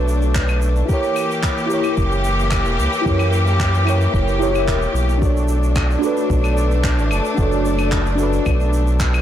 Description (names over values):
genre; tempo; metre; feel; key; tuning
sunset chillout; 111 BPM; 4/4; straight; B minor; A4 = 439 Hz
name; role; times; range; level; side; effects
mellow FM electric piano; accompaniment; 0.0-9.2 s; D4 to E5; -22 LUFS; moving between left 3 dB and right 3 dB; chorus, phaser, auto-pan, tape echo
rich symphonic string section; sustained chords; 0.0-9.2 s; E3 to G4; -22 LUFS; left 1 dB; none
round analog bass; bass; 0.0-9.2 s; E1 to F#2; -18 LUFS; equal; tube saturation
shaker, handclaps and claves; drums; 0.1-9.2 s; none; -27 LUFS; equal; soft clipping on snare
electronic kick drum; drums; 0.4-9.1 s; none; -21 LUFS; equal; none
room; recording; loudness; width
light reverb, small room ambience; blown-out, overdriven recording, overdrive; -15 LUFS; side -11 dB against mid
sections
0.0-9.2 A section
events
none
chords
0.0 Bm9; 0.9 F#7b9; 5.2 Bm9